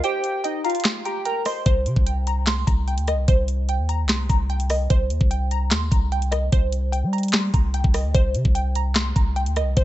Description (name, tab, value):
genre	hip hop, trap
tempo	148 BPM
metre	4/4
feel	half-time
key	C minor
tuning	A4 = 440 Hz
part	warbly lo-fi synth keys	melody	0.0-1.6 s	Eb4 to C6	-25 LUFS	right 1 dB	chorus, tape echo
part	glassy wavetable pluck	accompaniment	0.0-9.8 s	C5 to C6	-28 LUFS	right 1 dB	chorus
part	trap drum kit	drums	0.0-9.8 s	handclaps, hi-hat, kick drum, rim click, snare drum	-21 LUFS	equal	none
part	long sustained 808-style bass	bass	1.7-9.8 s	C2 to G3	-22 LUFS	equal	none
room	little or no reverb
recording	nothing above 8.0 kHz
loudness	-19 LUFS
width	side -14 dB against mid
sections	0.0-1.7 A section; 1.7-9.8 B section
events	break 0.0-1.7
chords	0.0 Cm7